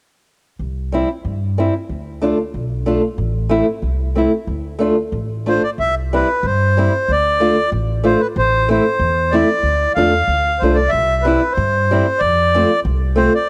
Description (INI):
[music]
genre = alpine folk, alpine dance band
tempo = 93 BPM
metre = 2/4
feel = rubato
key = C major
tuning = A4 = 440 Hz
[part]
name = upright bass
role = bass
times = 0.6-13.3 s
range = A1 to G2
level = -23 LUFS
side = equal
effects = none
[part]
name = fingerpicked old ladder-braced acoustic guitar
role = accompaniment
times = 0.9-13.3 s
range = G3 to F4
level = -21 LUFS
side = equal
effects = cassette tape
[part]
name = accordion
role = melody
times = 5.5-13.5 s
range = B4 to F5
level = -19 LUFS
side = equal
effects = cassette tape
[sound]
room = light reverb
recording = home recording on cassette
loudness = -17 LUFS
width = mono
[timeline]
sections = 0.6-5.8 A section; 5.8-13.5 B section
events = none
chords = 0.6 C; 1.9 Dm; 3.2 Am; 4.5 Dm; 5.8 C; 7.1 Dm; 8.4 Am; 9.6 Dm; 10.9 C; 12.2 F